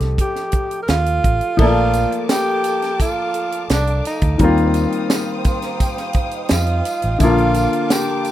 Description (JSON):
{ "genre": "lush 1970s-style soul", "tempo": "85 BPM", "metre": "4/4", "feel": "straight", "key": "Bb major", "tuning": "A4 = 440 Hz", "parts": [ { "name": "clear concert grand piano", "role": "accompaniment", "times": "0.0-8.3 s", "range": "D3 to D5", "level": "-21 LUFS", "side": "left 3 dB", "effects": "none" }, { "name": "vintage muted fingered electric bass", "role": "bass", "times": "0.0-7.7 s", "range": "A1 to F2", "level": "-19 LUFS", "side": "right 1 dB", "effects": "none" }, { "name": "tight funk drum kit", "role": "drums", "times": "0.0-8.3 s", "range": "crash cymbal, hi-hat, kick drum, snare drum", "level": "-20 LUFS", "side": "right 1 dB", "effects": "none" }, { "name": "breathy tenor saxophone", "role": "melody", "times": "0.2-8.3 s", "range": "D4 to Bb4", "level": "-21 LUFS", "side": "right 2 dB", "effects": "none" }, { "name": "warm studio string section", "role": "sustained chords", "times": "1.6-8.3 s", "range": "Bb3 to Eb6", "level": "-29 LUFS", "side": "right 1 dB", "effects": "none" }, { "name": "tambourine", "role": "percussion", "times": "2.0-8.3 s", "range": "none", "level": "-33 LUFS", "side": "right 2 dB", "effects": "none" }, { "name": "vibraphone with soft mallets", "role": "texture", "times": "5.5-7.2 s", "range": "Eb5 to C6", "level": "-31 LUFS", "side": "right 3 dB", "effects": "none" } ], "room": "light reverb", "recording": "rough home demo mix", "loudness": "-15 LUFS", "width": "side -13 dB against mid", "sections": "0.0-1.6 A section; 1.6-8.3 B section", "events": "none", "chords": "0.0 F9; 1.6 Bbmaj7; 4.4 Eb69; 7.2 Bbmaj7" }